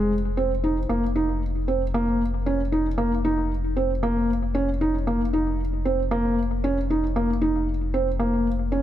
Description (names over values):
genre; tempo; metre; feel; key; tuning
piano and strings electronica; 115 BPM; 4/4; straight; unclear; A4 = 440 Hz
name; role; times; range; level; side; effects
felt-muted upright piano; riff; 0.0-8.8 s; Ab3 to Eb4; -23 LUFS; right 1 dB; ping-pong delay
warm sub bass; bass; 0.0-8.8 s; F1; -27 LUFS; equal; none
room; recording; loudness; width
light reverb; none; -22 LUFS; side -12 dB against mid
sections
0.0-8.8 A section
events
none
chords
0.0 Fm7; 0.9 Ebsus2/F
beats
0.37 | 0.89 1.41 1.94 2.46 | 2.98 3.50 4.02 4.54 | 5.07 5.59 6.11 6.63 | 7.15 7.67 8.20 8.72